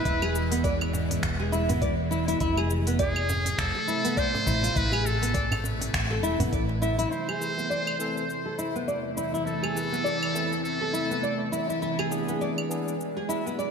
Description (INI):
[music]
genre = organic downtempo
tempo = 102 BPM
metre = 4/4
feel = swing 58% on 16ths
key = unclear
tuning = A4 = 436 Hz
[part]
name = trumpet with metal mute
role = melody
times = 0.0-11.5 s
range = G#4 to C5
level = -31 LUFS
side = equal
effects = ping-pong delay
[part]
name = bowed-like drone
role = sustained chords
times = 0.0-13.7 s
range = E2 to E4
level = -32 LUFS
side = right 1 dB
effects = built-in reverb, phaser, sidechain pumping
[part]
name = nylon-string guitar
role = arpeggios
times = 0.0-13.7 s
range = B3 to D5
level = -30 LUFS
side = equal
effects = wide subtle chorus, low-pass filter, ping-pong delay
[part]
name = woody fretless electric bass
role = bass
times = 0.1-7.1 s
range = E1 to A1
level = -29 LUFS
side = equal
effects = sidechain pumping
[part]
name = afro-pop drum kit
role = drums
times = 0.1-13.7 s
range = claves, finger snaps, hi-hat, shaker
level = -34 LUFS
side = equal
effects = gated reverb
[part]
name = electronic kick drum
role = drums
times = 0.1-6.7 s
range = none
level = -30 LUFS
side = equal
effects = none
[part]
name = djembe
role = percussion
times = 0.8-6.8 s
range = none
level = -34 LUFS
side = right 2 dB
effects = none
[part]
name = barky tine electric piano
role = accompaniment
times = 7.4-12.9 s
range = E3 to B4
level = -35 LUFS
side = equal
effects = overdrive, auto-pan, sidechain pumping, ping-pong delay
[sound]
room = wet lush hall reverb, RT60 1.8 s, digital ambience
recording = bright 1980s-style digital production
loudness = -24 LUFS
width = side -6 dB against mid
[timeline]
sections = 0.0-7.1 A section; 7.1-13.7 B section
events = filter sweep on nylon-string guitar 7.1-13.7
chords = 0.0 E; 2.4 F; 4.8 Am/E; 11.8 E7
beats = | 0.06 0.64 1.23 1.82 | 2.41 3.00 3.58 4.17 | 4.76 5.35 5.94 6.53 | 7.12 7.70 8.29 8.88 | 9.47 10.06 10.64 11.23 | 11.82 12.41 13.00 13.59